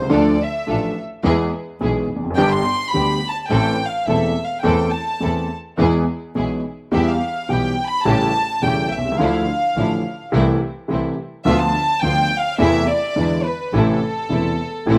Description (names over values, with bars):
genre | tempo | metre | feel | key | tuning
tango | 106 BPM | 4/4 | rubato | A minor | A4 = 442 Hz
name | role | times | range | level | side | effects
warm studio violin section | second line | 0.0-15.0 s | A4 to C6 | -24 LUFS | equal | slapback echo
warm concert grand piano | accompaniment | 0.0-15.0 s | E1 to A4 | -22 LUFS | equal | none
warm double bass | bass | 0.0-15.0 s | E1 to E2 | -25 LUFS | equal | none
rich studio string section | stabs | 0.1-15.0 s | F3 to A4 | -30 LUFS | equal | slapback echo
room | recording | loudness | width
little or no reverb | recorded outdoors, with no room sound | -19 LUFS | mono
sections
0.0-15.0 A section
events
violin section solo 0.0-15.0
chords
0.1 Dm; 1.2 E; 2.4 G; 3.5 Am/E; 5.8 E; 6.9 Em; 8.1 A7; 9.2 Dmadd9; 10.3 Am/C; 11.5 Bdim/D; 12.6 Am/E; 13.2 E7; 13.7 Am